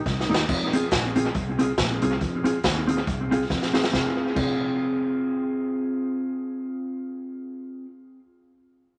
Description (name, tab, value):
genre	ska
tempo	139 BPM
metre	4/4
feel	swing 56% on 8ths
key	F minor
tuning	A4 = 441 Hz
part	fingered electric bass	bass	0.1-7.6 s	F1 to F2	-33 LUFS	equal	none
part	street-band drum kit	drums	0.1-4.5 s	crash cymbal, hi-hat, kick drum, snare drum	-29 LUFS	equal	dub echo
part	mellow electric guitar	accompaniment	0.3-7.9 s	Bb3 to Ab4	-28 LUFS	equal	dub echo
room	light reverb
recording	nothing above 10.3 kHz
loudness	-25 LUFS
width	mono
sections	0.5-3.9 A section; 3.9-7.4 B section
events	drum fill 0.1-0.5, 3.5-3.9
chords	0.5 Fm